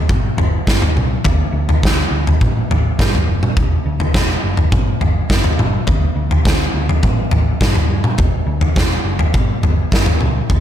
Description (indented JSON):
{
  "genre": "quiet-loud alternative rock",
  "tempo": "104 BPM",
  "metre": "4/4",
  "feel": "straight",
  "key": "unclear",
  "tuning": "A4 = 440 Hz",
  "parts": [
    { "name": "hollow-body short-scale picked electric bass", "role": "bass", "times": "0.1-10.6 s", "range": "E1 to G2", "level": "-20 LUFS", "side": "equal", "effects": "none" },
    { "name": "big rock drum kit", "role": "drums", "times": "0.1-10.6 s", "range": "kick drum, snare drum, toms", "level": "-14 LUFS", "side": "equal", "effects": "none" }
  ],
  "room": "light reverb",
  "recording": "none",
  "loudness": "-13 LUFS",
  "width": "side -10 dB against mid",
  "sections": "0.0-10.6 A section",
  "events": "none",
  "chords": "none",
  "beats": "0.09 0.67 | 1.25 1.83 2.41 2.99 | 3.56 4.14 4.72 5.30 | 5.88 6.45 7.03 7.61 | 8.19 8.76 9.34 9.92 | 10.49"
}